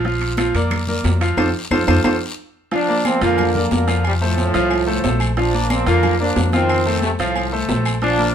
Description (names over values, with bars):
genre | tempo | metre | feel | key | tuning
latin, salsa | 181 BPM | 4/4 | straight | Bb major | A4 = 440 Hz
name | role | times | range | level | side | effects
bright baby grand piano | accompaniment | 0.0-8.3 s | F3 to F5 | -20 LUFS | equal | none
upright bass | bass | 0.0-8.3 s | Bb1 to F2 | -21 LUFS | equal | none
congas | percussion | 0.0-8.3 s | none | -26 LUFS | left 1 dB | none
guiro | percussion | 0.0-8.3 s | none | -31 LUFS | left 4 dB | none
timbales and agogo bells | percussion | 0.2-8.2 s | none | -27 LUFS | right 6 dB | none
claves | percussion | 0.4-8.0 s | none | -29 LUFS | left 5 dB | none
bright trombone section | melody | 2.7-8.3 s | A2 to D4 | -20 LUFS | equal | none
room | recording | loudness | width
moderate studio reverb, RT60 0.8 s | minimal, uncompressed stereo recording | -16 LUFS | side -8 dB against mid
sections
0.0-2.7 A section; 2.7-8.3 B section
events
band accent 1.4-2.7; drum fill 1.9-2.7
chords
0.0 Bb; 1.4 F; 2.7 Bb; 4.0 F; 5.4 Bb; 6.7 F7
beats
| 0.04 0.38 0.71 1.05 | 1.38 1.71 2.05 2.38 | 2.71 3.05 3.38 3.71 | 4.04 4.38 4.71 5.04 | 5.37 5.70 6.04 6.37 | 6.70 7.03 7.36 7.69 | 8.02 8.35